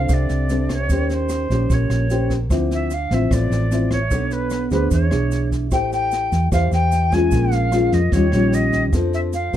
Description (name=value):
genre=bossa nova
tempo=149 BPM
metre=4/4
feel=straight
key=unclear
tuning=A4 = 440 Hz
part: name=jazz flute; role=melody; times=0.0-9.6 s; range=B4 to Ab5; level=-24 LUFS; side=equal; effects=none
part: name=nylon-string guitar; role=accompaniment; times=0.0-9.6 s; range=A2 to C#5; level=-22 LUFS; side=left 2 dB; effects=none
part: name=hollow-body short-scale fingered electric bass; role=bass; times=0.0-9.6 s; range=A1 to F2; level=-20 LUFS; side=right 1 dB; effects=none
part: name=jazz brush drum kit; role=drums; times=0.1-9.6 s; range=kick drum, rim click, snare drum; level=-25 LUFS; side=equal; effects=none
part: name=tube shaker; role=percussion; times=0.1-9.6 s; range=none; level=-42 LUFS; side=right 10 dB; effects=none
room=light reverb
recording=dark, warm production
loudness=-17 LUFS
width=side -11 dB against mid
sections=0.0-9.6 A section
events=none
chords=0.0 F6 (rootless); 0.9 Eb6; 2.5 Dm9; 4.1 Bm9; 4.9 E7b13; 5.7 Am7; 7.3 Bbm7; 8.1 Eb9; 8.9 F6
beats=0.09 0.49 | 0.90 1.30 1.70 2.10 | 2.50 2.91 3.31 3.71 | 4.11 4.51 4.92 5.32 | 5.72 6.12 6.52 6.92 | 7.32 7.73 8.13 8.53 | 8.93 9.33